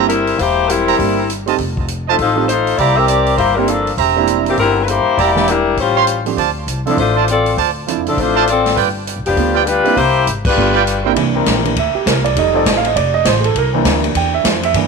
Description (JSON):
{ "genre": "jazz, big band swing", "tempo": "201 BPM", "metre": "4/4", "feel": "swing 62% on 8ths", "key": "C mixolydian", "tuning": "A4 = 440 Hz", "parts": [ { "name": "warm grand piano", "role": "accompaniment", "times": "0.0-14.9 s", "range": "E3 to G5", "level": "-18 LUFS", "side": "right 13 dB", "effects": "none" }, { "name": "clear trumpet section", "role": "stabs", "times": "0.0-11.1 s", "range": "E4 to B#5", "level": "-19 LUFS", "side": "right 12 dB", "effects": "tape echo" }, { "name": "upright bass", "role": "bass", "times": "0.0-14.9 s", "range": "E1 to G2", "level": "-21 LUFS", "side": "left 1 dB", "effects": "none" }, { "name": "warm saxophone section", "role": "melody", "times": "0.1-11.0 s", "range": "E3 to E5", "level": "-15 LUFS", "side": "left 5 dB", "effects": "none" }, { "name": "swinging big-band drum kit", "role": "drums", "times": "0.1-14.8 s", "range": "crash cymbal, hi-hat, kick drum, ride cymbal, snare drum", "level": "-21 LUFS", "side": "equal", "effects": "none" }, { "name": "clear trombone section", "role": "sustained chords", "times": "11.3-14.1 s", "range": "F3 to Bb4", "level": "-21 LUFS", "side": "left 14 dB", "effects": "none" } ], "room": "light reverb, studio reverb", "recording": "1960s-style stereo with parts hard left and right", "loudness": "-12 LUFS", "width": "side -4 dB against mid", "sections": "0.0-11.2 A section; 11.2-14.9 B section", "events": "band accent 10.4; grand piano solo 11.2-14.9", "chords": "0.0 C7; 1.6 F7; 2.8 C7; 5.2 Em7b5; 5.8 A7alt; 6.4 Dm7; 8.8 G7; 10.0 C7; 10.6 G7; 11.2 C7; 12.4 F7; 13.6 C7" }